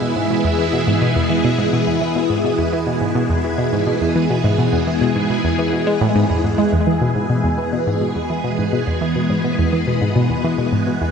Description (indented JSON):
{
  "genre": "ambient, sequencer-driven space music",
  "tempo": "105 BPM",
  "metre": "4/4",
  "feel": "straight",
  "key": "E major",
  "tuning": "A4 = 440 Hz",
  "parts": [
    { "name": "phased string machine", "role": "sustained chords", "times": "0.0-11.1 s", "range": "E3 to B4", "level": "-19 LUFS", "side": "equal", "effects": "ensemble chorus, phaser" },
    { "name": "analog pluck", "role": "riff", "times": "0.0-11.1 s", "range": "E2 to G#3", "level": "-18 LUFS", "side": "equal", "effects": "chorus, phaser, ping-pong delay" }
  ],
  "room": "wet plate reverb, RT60 3.6 s",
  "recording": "none",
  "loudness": "-16 LUFS",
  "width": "side -6 dB against mid",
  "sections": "0.0-6.7 A section; 6.7-11.1 B section",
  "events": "filter sweep on synth arpeggio sound 0.0-6.7",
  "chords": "0.0 E"
}